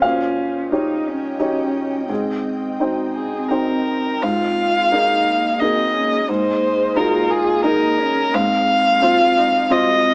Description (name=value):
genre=neoclassical piano and strings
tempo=87 BPM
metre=3/4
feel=rubato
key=Ab major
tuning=A4 = 440 Hz
part: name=muted cello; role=second line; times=0.0-10.1 s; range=C4 to F4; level=-23 LUFS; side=equal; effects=none
part: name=felt-muted upright piano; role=accompaniment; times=0.0-10.1 s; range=Ab2 to G5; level=-21 LUFS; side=equal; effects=none
part: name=ethereal airy pad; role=sustained chords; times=0.0-10.1 s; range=Ab3 to G5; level=-28 LUFS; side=equal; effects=ensemble chorus, built-in reverb
part: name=muted violin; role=melody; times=3.1-10.1 s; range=Ab4 to F5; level=-17 LUFS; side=equal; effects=none
room=light reverb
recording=small speaker sound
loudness=-15 LUFS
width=side -34 dB against mid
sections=0.0-4.2 A section; 4.2-10.1 A section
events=none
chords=0.0 Eb7/Bb; 2.1 Abmaj7; 4.2 Absus2; 8.3 Fm/Ab